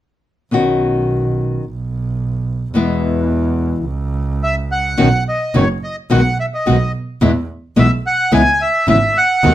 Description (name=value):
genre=tango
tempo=108 BPM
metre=4/4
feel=rubato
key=B major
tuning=A4 = 440 Hz
part: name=nylon-string guitar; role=accompaniment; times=0.5-9.5 s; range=B2 to F#4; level=-15 LUFS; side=left 2 dB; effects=none
part: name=clear double bass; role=bass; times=0.5-9.5 s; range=F#1 to E2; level=-19 LUFS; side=right 2 dB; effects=none
part: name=bandoneon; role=melody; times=4.4-9.5 s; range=C#5 to G#5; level=-16 LUFS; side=equal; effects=plate reverb
room=moderate studio reverb, RT60 0.5 s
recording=none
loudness=-14 LUFS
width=side -13 dB against mid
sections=0.5-5.0 A section; 5.0-9.5 B section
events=none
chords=0.5 Badd9; 1.6 N.C.; 2.8 E; 3.9 C#madd11; 5.0 Badd9; 6.1 G#m7/B; 7.2 E; 8.3 C#m7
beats=| 0.52 1.08 1.65 2.20 | 2.75 3.30 3.85 4.41 | 4.98 5.55 6.11 6.67 | 7.22 7.77 8.33 8.88 | 9.43